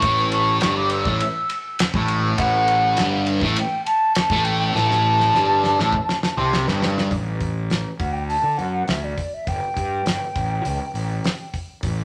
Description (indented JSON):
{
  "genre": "psychedelic rock",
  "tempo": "102 BPM",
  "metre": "4/4",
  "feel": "straight",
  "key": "A mixolydian",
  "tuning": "A4 = 439 Hz",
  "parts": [
    { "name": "mellow hollow silver concert flute", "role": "melody", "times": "0.0-11.5 s", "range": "D5 to E6", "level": "-24 LUFS", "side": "equal", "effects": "none" },
    { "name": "fuzz guitar", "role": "riff", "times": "0.0-7.1 s", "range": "G2 to C4", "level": "-24 LUFS", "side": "equal", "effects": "distortion, phaser" },
    { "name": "fuzz fingered electric bass", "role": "bass", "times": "0.0-12.0 s", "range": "G1 to D3", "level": "-28 LUFS", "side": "equal", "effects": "overdrive" },
    { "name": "damped 70s drum kit", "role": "drums", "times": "0.0-12.0 s", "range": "hi-hat, kick drum, ride cymbal, snare drum", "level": "-28 LUFS", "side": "equal", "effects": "none" }
  ],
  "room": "moderate large studio reverb, RT60 0.9 s",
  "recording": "none",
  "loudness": "-21 LUFS",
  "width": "mono",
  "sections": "0.0-7.1 A section; 7.1-12.0 B section",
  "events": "drum fill 4.7-7.1",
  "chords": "0.0 N.C.; 8.0 D; 9.5 N.C.; 10.4 A7(no3)"
}